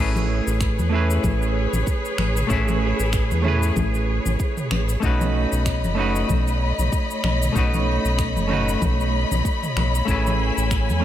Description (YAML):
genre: sunset chillout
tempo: 95 BPM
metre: 4/4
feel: swing 57% on 16ths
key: A lydian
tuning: A4 = 439 Hz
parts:
  - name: semi-hollow electric guitar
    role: accompaniment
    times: 0.0-11.0 s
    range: A3 to B4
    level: -26 LUFS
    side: right 1 dB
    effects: auto-pan, digital delay
  - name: warm studio string section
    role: sustained chords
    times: 0.0-11.0 s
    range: A3 to B5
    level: -26 LUFS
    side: left 2 dB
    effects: none
  - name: round analog bass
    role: bass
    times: 0.0-11.0 s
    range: F#1 to E2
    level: -22 LUFS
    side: equal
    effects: none
  - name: deep house drum kit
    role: drums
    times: 0.2-11.0 s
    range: finger snaps, shaker, toms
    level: -32 LUFS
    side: equal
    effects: none
  - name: congas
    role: percussion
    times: 0.2-11.0 s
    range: none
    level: -30 LUFS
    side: left 4 dB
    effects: none
  - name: electronic kick drum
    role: drums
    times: 0.6-10.9 s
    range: none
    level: -24 LUFS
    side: equal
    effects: none
  - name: wind-like tuned noise texture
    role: texture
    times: 10.6-11.0 s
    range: F#5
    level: -47 LUFS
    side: right 3 dB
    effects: none
room: light reverb, digital ambience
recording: faint mains hum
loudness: -19 LUFS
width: side -12 dB against mid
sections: 0.0-11.0 A section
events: none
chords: 0.0 Amaj9; 5.0 B9; 10.1 Amaj9